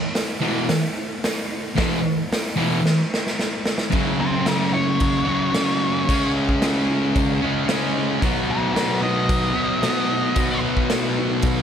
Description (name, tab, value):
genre	garage rock duo or trio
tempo	112 BPM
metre	4/4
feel	straight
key	E major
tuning	A4 = 440 Hz
part	raw garage drum kit	drums	0.2-11.6 s	crash cymbal, hi-hat, kick drum, snare drum	-23 LUFS	equal	none
part	thick fuzz guitar	riff	0.4-11.6 s	E2 to C#4	-20 LUFS	equal	distortion
part	octave-fuzz lead guitar	melody	4.2-10.6 s	F#4 to E5	-24 LUFS	left 1 dB	distortion, digital delay
room	light reverb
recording	none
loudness	-19 LUFS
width	side -8 dB against mid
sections	0.0-3.9 A section; 3.9-11.6 B section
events	drum fill 2.9-3.9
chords	0.0 E5; 3.9 F#5; 6.1 C#5; 8.2 B